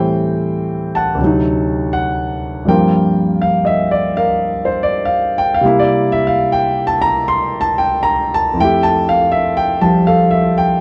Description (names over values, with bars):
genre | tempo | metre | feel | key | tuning
solo jazz | 81 BPM | 4/4 | swing 67% on 8ths | F major | A4 = 440 Hz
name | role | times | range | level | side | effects
warm concert grand piano | solo | 0.0-10.8 s | D2 to C6 | -15 LUFS | equal | none
room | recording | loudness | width
light reverb | dark, warm production | -15 LUFS | mono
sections
0.0-10.8 A section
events
none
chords
0.0 Am7; 1.2 D7b9; 2.7 Gm7; 5.6 C7; 8.6 Fmaj9